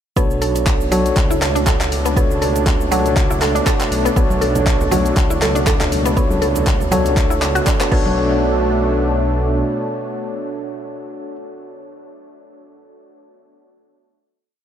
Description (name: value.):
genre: afro house.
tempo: 120 BPM.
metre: 4/4.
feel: swing 55% on 16ths.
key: B minor.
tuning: A4 = 440 Hz.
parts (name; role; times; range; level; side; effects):
warm analog pad; sustained chords; 0.2-11.4 s; B2 to D4; -24 LUFS; left 1 dB; chorus, sidechain pumping.
mallet-like synth pluck; arpeggios; 0.2-8.4 s; F#3 to A4; -23 LUFS; right 1 dB; chorus, phaser, sidechain pumping, analog delay.
tine electric piano; stabs; 0.2-11.4 s; D4 to C#5; -22 LUFS; moving between left 3 dB and right 6 dB; auto-pan, sidechain pumping, analog delay.
dark detuned saw bass; bass; 0.2-9.6 s; B1 to C#2; -22 LUFS; equal; sidechain pumping.
deep house drum kit; drums; 0.2-8.0 s; cabasa, crash cymbal, handclaps, hi-hat; -24 LUFS; equal; none.
electronic kick drum; drums; 0.2-8.0 s; none; -18 LUFS; equal; none.
congas; percussion; 4.3-8.1 s; none; -26 LUFS; right 2 dB; none.
room: moderate huge ambient reverb, RT60 7.3 s.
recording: dreamy mix soaked in reverb.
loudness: -14 LUFS.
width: side -9 dB against mid.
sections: 0.2-8.2 drop; 8.2-12.2 final hit.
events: drop 0.2-8.2.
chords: 0.2 Bm7.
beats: | 0.17 0.67 1.17 1.67 | 2.17 2.67 3.17 3.67 | 4.17 4.67 5.17 5.67 | 6.17 6.67 7.17 7.67 | 8.17 8.67 9.17 9.67 | 10.17 10.67 11.17.